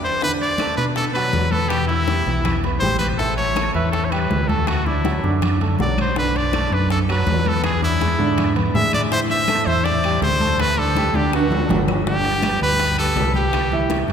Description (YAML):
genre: latin, salsa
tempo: 162 BPM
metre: 4/4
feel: straight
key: G major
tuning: A4 = 441 Hz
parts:
  - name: brilliant trumpet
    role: melody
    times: 0.0-14.0 s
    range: E4 to E5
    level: -21 LUFS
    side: equal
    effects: none
  - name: clear grand piano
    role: accompaniment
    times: 0.2-14.1 s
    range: D3 to E6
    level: -25 LUFS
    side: right 3 dB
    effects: none
  - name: bongos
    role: percussion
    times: 0.2-14.1 s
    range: none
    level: -30 LUFS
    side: left 4 dB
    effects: none
  - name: congas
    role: percussion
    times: 0.2-14.1 s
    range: none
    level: -28 LUFS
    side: left 2 dB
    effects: none
  - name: timbales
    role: percussion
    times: 0.4-14.1 s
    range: none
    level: -29 LUFS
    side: right 3 dB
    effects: none
  - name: claves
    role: percussion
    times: 0.6-13.7 s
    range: none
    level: -40 LUFS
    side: left 6 dB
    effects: none
  - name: fingered electric bass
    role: bass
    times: 0.8-14.1 s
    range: G1 to B2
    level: -22 LUFS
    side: left 1 dB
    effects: none
room: wet cathedral reverb, RT60 4.3 s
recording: recorded in a church or concert hall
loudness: -17 LUFS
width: side -7 dB against mid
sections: 0.2-12.1 A section; 12.1-14.1 B section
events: band accent 0.0; drum fill 11.0-12.1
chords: 0.2 Bm7; 1.7 Em; 3.2 A7; 4.7 D; 6.2 Bm7; 7.6 E7; 9.1 Am7; 10.6 Dsus4; 11.3 D; 12.1 G; 13.5 Cmaj7